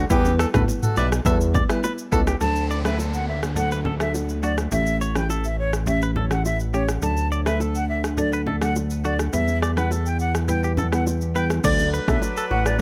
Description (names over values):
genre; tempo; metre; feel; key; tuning
afrobeats; 104 BPM; 4/4; straight; D major; A4 = 441 Hz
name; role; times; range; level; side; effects
mallet-like synth pluck; accompaniment; 0.0-12.8 s; E3 to B4; -30 LUFS; equal; chorus
direct-recorded clean electric guitar; riff; 0.0-12.6 s; F#4 to E5; -32 LUFS; equal; digital delay
fat analog bass; bass; 0.0-12.8 s; A1 to E2; -26 LUFS; equal; none
mellow horn section; second line; 0.1-2.2, 11.6-12.8 s; E3 to B4; -31 LUFS; equal; none
afro-pop drum kit; drums; 0.1-12.8 s; crash cymbal, kick drum, rim click, shaker, toms; -28 LUFS; equal; none
congas and bongos; percussion; 0.1-12.8 s; none; -33 LUFS; equal; none
breathy bright concert flute; melody; 2.4-12.8 s; C#5 to A5; -30 LUFS; equal; digital delay
downlifter; sound effects; 2.4-7.0 s; none; -40 LUFS; equal; none
room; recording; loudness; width
light reverb; none; -22 LUFS; mono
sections
0.0-2.4 A section; 2.4-11.6 B section; 11.6-12.8 C section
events
kick muted 9.3-11.6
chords
0.1 Em; 2.4 D; 4.7 A7; 7.0 D; 9.3 Em; 11.6 D